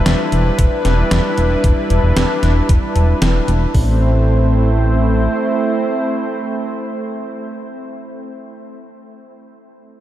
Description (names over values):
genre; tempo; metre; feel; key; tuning
synthwave; 114 BPM; 4/4; straight; A minor; A4 = 440 Hz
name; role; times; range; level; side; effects
warm analog pad; sustained chords; 0.0-8.3 s; G3 to C5; -19 LUFS; right 1 dB; chorus, sidechain pumping
fat analog bass; bass; 0.0-5.3 s; E1 to A1; -14 LUFS; equal; tube saturation
gated 80s digital drum machine; drums; 0.1-3.6 s; hi-hat, snare drum; -23 LUFS; equal; gated reverb, gated reverb snare, overdrive
gated 80s digital drum machine; drums; 0.6-3.9 s; hi-hat, kick drum; -15 LUFS; equal; overdrive
room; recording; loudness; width
moderate huge ambient reverb, RT60 8.2 s; dreamy mix soaked in reverb; -13 LUFS; side -13 dB against mid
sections
0.0-3.7 A section; 3.7-8.0 B section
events
none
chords
0.0 Em7; 3.7 Am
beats
0.06 0.59 1.11 | 1.64 2.17 2.69 3.22 | 3.74 4.27 4.80 5.32 | 5.85 6.38 6.90 7.43